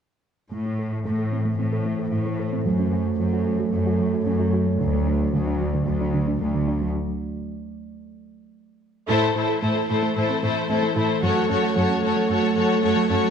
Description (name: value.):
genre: cinematic.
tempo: 112 BPM.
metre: 4/4.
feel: straight.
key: unclear.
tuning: A4 = 440 Hz.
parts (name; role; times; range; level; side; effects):
deep rumbling drone; sustained chords; 1.3-13.3 s; E3 to D5; -26 LUFS; right 2 dB; built-in reverb, low-pass filter.
soft round pluck; arpeggios; 0.5-13.2 s; D3 to A4; -28 LUFS; right 2 dB; chorus, low-pass filter, digital delay.
rich symphonic cello section; bass; 0.5-13.2 s; D2 to A2; -26 LUFS; equal; none.
rich symphonic violin section; second line; 9.1-13.3 s; A4 to C#5; -24 LUFS; left 6 dB; none.
warm studio viola section; accompaniment; 9.1-13.3 s; A3 to F#4; -24 LUFS; equal; low-pass filter.
room: moderate scoring stage reverb, RT60 1.5 s.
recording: dark, warm production.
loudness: -20 LUFS.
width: side -7 dB against mid.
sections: 0.5-9.1 A section; 9.1-13.3 B section.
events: filter sweep 0.5-9.1; break 6.9-9.1; band accent 9.1-9.6.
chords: 0.5 Am; 2.7 F#m; 4.8 D; 6.9 N.C.; 9.1 Am; 11.2 F#m.